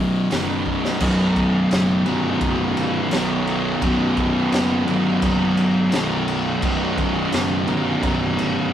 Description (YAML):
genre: stoner and doom metal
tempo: 86 BPM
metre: 4/4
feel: straight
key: unclear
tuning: A4 = 441 Hz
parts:
  - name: thick fuzz guitar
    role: riff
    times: 0.0-8.7 s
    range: B1 to B2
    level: -19 LUFS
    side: equal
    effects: distortion
  - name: fuzz picked electric bass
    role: bass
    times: 0.0-8.7 s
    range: B0 to B1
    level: -29 LUFS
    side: equal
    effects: overdrive
  - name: raw garage drum kit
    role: drums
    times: 0.3-8.5 s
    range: crash cymbal, hi-hat, kick drum, snare drum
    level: -26 LUFS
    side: equal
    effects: none
room: moderate studio reverb, RT60 0.6 s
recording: rough rehearsal-room recording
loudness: -18 LUFS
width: side -10 dB against mid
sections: 0.0-1.0 A section; 1.0-8.7 B section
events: drum fill 0.7-1.0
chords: 0.0 B5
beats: 0.31 | 1.01 1.71 2.41 3.12 | 3.82 4.52 5.22 5.92 | 6.63 7.33 8.03